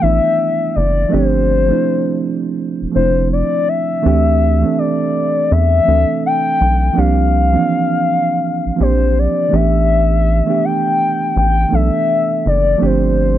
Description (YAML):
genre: R&B, neo-soul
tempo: 82 BPM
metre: 4/4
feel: swing 61% on 16ths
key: D minor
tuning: A4 = 440 Hz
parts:
  - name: gliding portamento lead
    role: melody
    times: 0.0-13.4 s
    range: C5 to G5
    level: -16 LUFS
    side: left 4 dB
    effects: chorus
  - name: reed electric piano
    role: accompaniment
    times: 0.0-13.4 s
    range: E3 to A4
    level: -18 LUFS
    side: right 6 dB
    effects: overdrive
  - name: rubbery square bass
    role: bass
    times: 0.0-13.4 s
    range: F1 to E2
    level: -15 LUFS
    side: equal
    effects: none
room: little or no reverb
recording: dry, close 1970s-style studio recording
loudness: -12 LUFS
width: side -12 dB against mid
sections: 0.0-13.4 A section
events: none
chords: 0.0 A9sus4; 1.1 G9sus4; 4.0 D9sus4; 7.0 C9sus4; 9.5 A9sus4; 12.8 G9sus4